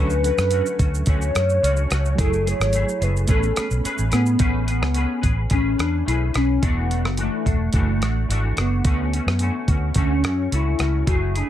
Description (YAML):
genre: indie pop, bedroom pop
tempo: 108 BPM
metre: 4/4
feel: straight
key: A major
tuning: A4 = 439 Hz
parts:
  - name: warbly nostalgic lead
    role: melody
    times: 0.0-11.5 s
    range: A3 to C#5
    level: -24 LUFS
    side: left 1 dB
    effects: analog chorus, ping-pong delay
  - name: reed electric piano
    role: accompaniment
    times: 0.0-4.4 s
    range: F#3 to A4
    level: -30 LUFS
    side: right 5 dB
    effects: fast tremolo, cassette tape
  - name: semi-hollow electric guitar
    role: accompaniment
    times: 0.0-11.5 s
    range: D3 to B4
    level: -29 LUFS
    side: left 2 dB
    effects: ensemble chorus, warbly pitch drift
  - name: vintage muted fingered electric bass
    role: bass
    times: 0.0-11.4 s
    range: E1 to A2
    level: -22 LUFS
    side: equal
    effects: none
  - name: dusty soul sampler-style drum kit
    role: drums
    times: 0.1-11.5 s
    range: hi-hat, kick drum, rim click, shaker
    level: -22 LUFS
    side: equal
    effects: none
room: little or no reverb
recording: none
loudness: -18 LUFS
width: side -11 dB against mid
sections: 0.0-4.4 A section; 4.4-11.5 A section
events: none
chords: 0.0 Dmaj7; 2.2 F#m9; 3.3 Amaj9; 6.6 E9sus4; 8.8 Dmaj7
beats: 0.52 1.07 1.63 | 2.18 2.74 3.29 3.85 | 4.41 4.96 5.52 6.07 | 6.63 7.18 7.74 8.29 | 8.85 9.40 9.96 10.52 | 11.07